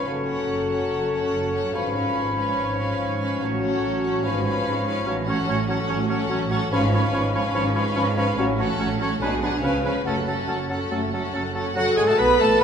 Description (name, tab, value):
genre	quick classical-period movement for symphony orchestra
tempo	144 BPM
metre	4/4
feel	straight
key	F# minor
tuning	A4 = 441 Hz
part	warm chamber violin section	melody	0.0-12.6 s	E#5 to B5	-32 LUFS	left 3 dB	none
part	rich chamber violin section	second line	0.0-12.6 s	F#4 to B4	-32 LUFS	left 1 dB	none
part	silver concert flute	second line	0.0-12.6 s	F#5 to B5	-32 LUFS	left 3 dB	none
part	warm clarinet	second line	0.0-12.6 s	C#4 to B4	-30 LUFS	right 1 dB	none
part	warm oboe	second line	0.0-12.6 s	F#4 to C#5	-31 LUFS	right 2 dB	none
part	dark bassoon	accompaniment	0.0-12.6 s	E#3 to B3	-30 LUFS	equal	none
part	warm studio viola section	accompaniment	0.0-12.6 s	F#3 to D4	-32 LUFS	equal	none
part	mellow French horn section	sustained chords	0.0-12.6 s	G#3 to B4	-28 LUFS	left 2 dB	none
part	warm chamber cello section	bass	0.0-12.6 s	F#2 to C#3	-31 LUFS	right 3 dB	none
part	warm studio double bass section	bass	0.0-12.6 s	F#1 to C#2	-29 LUFS	right 2 dB	none
room	wet recital hall reverb, RT60 1.6 s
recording	recorded in a church or concert hall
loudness	-21 LUFS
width	side -7 dB against mid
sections	0.0-11.8 A section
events	none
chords	0.1 F#m; 1.7 C#7/G#; 3.4 F#m/A; 4.2 C#7/G#; 5.1 F#m/A; 6.7 C#7/G#; 8.4 F#m/A; 9.2 G#m7b5/B; 9.6 C#7; 10.1 F#m